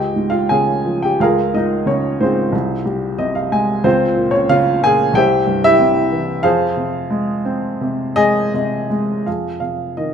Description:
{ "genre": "classical, lyrical solo piano", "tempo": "79-94 BPM", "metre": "4/4", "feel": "rubato", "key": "F minor", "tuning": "A4 = 440 Hz", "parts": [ { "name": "warm upright piano", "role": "solo", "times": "0.0-10.1 s", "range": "C2 to Ab5", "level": "-14 LUFS", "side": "equal", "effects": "none" } ], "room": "moderate recital hall reverb, RT60 1.5 s", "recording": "minimal, uncompressed stereo recording", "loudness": "-14 LUFS", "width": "side -7 dB against mid", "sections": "0.0-9.3 A section", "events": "upright piano fill 2.9-3.9, 7.8-9.3", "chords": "0.0 Dbadd9; 1.2 Bbm7/Db; 2.5 Fmadd9/C; 3.9 Bbmadd9/Db; 5.2 C; 6.4 Fm7" }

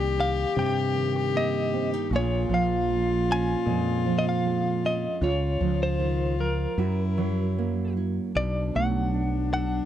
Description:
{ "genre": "acoustic folk-pop ballad", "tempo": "77 BPM", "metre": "4/4", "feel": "straight", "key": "Bb minor", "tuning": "A4 = 445 Hz", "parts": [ { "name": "direct-recorded clean electric guitar", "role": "melody", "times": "0.0-9.9 s", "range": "Bb4 to Ab5", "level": "-30 LUFS", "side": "left 1 dB", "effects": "tremolo" }, { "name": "warm cello", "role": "second line", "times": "0.0-9.9 s", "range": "D4 to G4", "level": "-30 LUFS", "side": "left 7 dB", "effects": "none" }, { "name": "nylon-string guitar", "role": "accompaniment", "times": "0.0-9.9 s", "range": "F2 to A4", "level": "-29 LUFS", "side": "right 9 dB", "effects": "none" }, { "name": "concert harp", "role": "arpeggios", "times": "0.0-9.9 s", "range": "Gb3 to Db4", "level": "-36 LUFS", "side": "right 1 dB", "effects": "none" }, { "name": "mellow fretless electric bass", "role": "bass", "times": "0.0-9.8 s", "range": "Bb1 to C3", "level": "-28 LUFS", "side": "left 1 dB", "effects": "none" } ], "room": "light reverb", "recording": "dry, close 1970s-style studio recording", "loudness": "-23 LUFS", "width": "side -11 dB against mid", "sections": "0.0-8.4 A section; 8.4-9.9 A section", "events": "none", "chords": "0.0 Cm7; 2.1 Bbm7; 5.2 Db; 6.8 Gb7; 8.4 Bm7" }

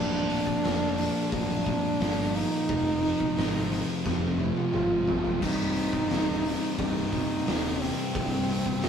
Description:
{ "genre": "stoner and doom metal", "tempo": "88 BPM", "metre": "4/4", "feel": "straight", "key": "C minor", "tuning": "A4 = 440 Hz", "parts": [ { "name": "mellow duduk", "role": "melody", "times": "0.0-8.9 s", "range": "C4 to F4", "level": "-29 LUFS", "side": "right 2 dB", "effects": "none" }, { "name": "sludgy distorted guitar", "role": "riff", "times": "0.0-8.9 s", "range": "C2 to Bb3", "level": "-38 LUFS", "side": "right 1 dB", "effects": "overdrive" }, { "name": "thick fuzz guitar", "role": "riff", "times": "0.0-8.9 s", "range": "C2 to Bb3", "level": "-32 LUFS", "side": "left 6 dB", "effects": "distortion" }, { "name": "thick fuzz guitar", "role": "riff", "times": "0.0-8.9 s", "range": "C2 to Bb3", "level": "-36 LUFS", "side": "right 5 dB", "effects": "distortion" }, { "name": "fuzz fingered electric bass", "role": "bass", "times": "0.0-8.9 s", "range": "C1 to Ab1", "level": "-34 LUFS", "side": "equal", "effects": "overdrive, tube saturation" }, { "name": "oversized low-tuned drum kit", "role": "drums", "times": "0.3-8.9 s", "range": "crash cymbal, hi-hat, kick drum, snare drum, toms", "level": "-31 LUFS", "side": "equal", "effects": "none" } ], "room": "light reverb", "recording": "rough rehearsal-room recording", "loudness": "-25 LUFS", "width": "side -7 dB against mid", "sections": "0.0-8.9 A section", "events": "drum fill 4.1-5.4", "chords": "0.0 Bb/D; 2.7 Fm; 5.4 Cm" }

